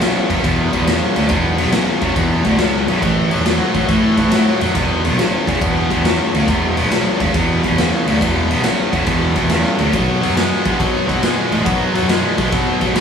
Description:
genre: blues rock power trio and southern rock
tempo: 139 BPM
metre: 4/4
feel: swing 67% on 8ths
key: E mixolydian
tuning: A4 = 440 Hz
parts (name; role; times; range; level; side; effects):
- tight distorted guitar; riff; 0.0-13.0 s; E2 to G#3; -17 LUFS; equal; distortion
- fuzz picked electric bass; bass; 0.0-13.0 s; E1 to B2; -20 LUFS; equal; overdrive
- raw garage drum kit; drums; 0.0-13.0 s; kick drum, ride cymbal, snare drum; -19 LUFS; left 1 dB; none
room: moderate stone room reverb, RT60 1.1 s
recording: band playing live in one room, small room ambience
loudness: -14 LUFS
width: side -7 dB against mid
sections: 0.0-13.0 A section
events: none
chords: 0.0 E5; 3.0 A5; 4.7 E5; 9.9 B5

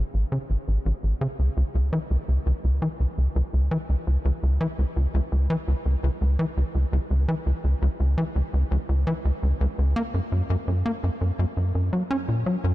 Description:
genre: ambient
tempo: 84 BPM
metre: 4/4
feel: straight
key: C# minor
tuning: A4 = 440 Hz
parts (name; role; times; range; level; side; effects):
- tight sequencer bass; solo; 0.0-12.7 s; A1 to C#4; -22 LUFS; equal; ping-pong delay
room: light reverb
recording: dark, warm production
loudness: -22 LUFS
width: side -16 dB against mid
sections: 0.0-12.7 A section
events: none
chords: none

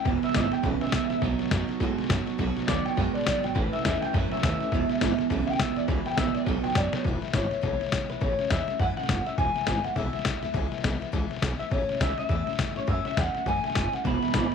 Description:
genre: rockabilly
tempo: 206 BPM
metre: 4/4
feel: swing 60% on 8ths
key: E major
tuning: A4 = 438 Hz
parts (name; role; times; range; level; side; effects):
- electric guitar through a small old amp; melody; 0.0-14.5 s; B4 to B5; -30 LUFS; left 2 dB; wide subtle chorus, tape echo
- picked steel-string acoustic guitar; accompaniment; 0.0-14.5 s; E2 to F#4; -35 LUFS; left 11 dB; none
- electric guitar through a small old amp; riff; 0.1-7.0, 14.0-14.5 s; E2 to G#3; -28 LUFS; right 16 dB; none
- upright bass; bass; 0.1-14.5 s; E1 to A2; -32 LUFS; right 1 dB; none
- trip hop sampler-style drum kit; drums; 0.1-14.5 s; hi-hat, kick drum, snare drum; -29 LUFS; left 2 dB; none
room: light reverb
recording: 1960s-style stereo with parts hard left and right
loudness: -24 LUFS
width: side -6 dB against mid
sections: 0.0-7.1 A section; 7.1-14.5 B section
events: clean electric guitar solo 0.0-7.1; drum fill 6.9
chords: 0.1 E; 1.2 B; 3.6 A; 4.7 E; 6.5 B; 7.1 E; 8.2 A; 9.4 E; 11.7 A; 14.0 E

